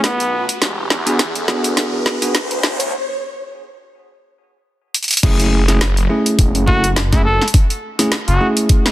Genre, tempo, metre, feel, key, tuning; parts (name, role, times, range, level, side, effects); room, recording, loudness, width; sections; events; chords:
glitch hop; 104 BPM; 4/4; swing 56% on 16ths; F# minor; A4 = 438 Hz
breathy trumpet; melody; 0.0-0.5, 6.7-8.5 s; B3 to A4; -20 LUFS; equal; low-pass filter, tape echo
bell-like tine electric piano; stabs; 0.0-8.9 s; A3 to A4; -20 LUFS; equal; vintage 12-bit sampler grit, sidechain pumping, tape echo
phased detuned saw bass; bass; 0.0-8.4 s; E1 to E2; -19 LUFS; equal; phaser, tube saturation, high-pass filter
drum and bass drum kit; drums; 0.0-8.9 s; crash cymbal, hi-hat, snare drum; -19 LUFS; equal; overdrive, small room ambience
riser; sound effects; 0.1-2.9 s; -25 LUFS; equal
electronic kick drum; drums; 5.2-8.8 s; -13 LUFS; equal; overdrive, small room ambience
light reverb; dense, heavily limited modern master, high-pass filter; -14 LUFS; side -15 dB against mid
0.0-5.2 A section; 5.2-8.9 B section
build-up 0.0-5.2; drum fill 0.0-2.9, 4.9; filter sweep 0.0-5.2; riser 0.1-2.9; break 2.9-5.2; drop 5.2-8.9
0.0 N.C.; 0.6 E7; 5.2 F#m9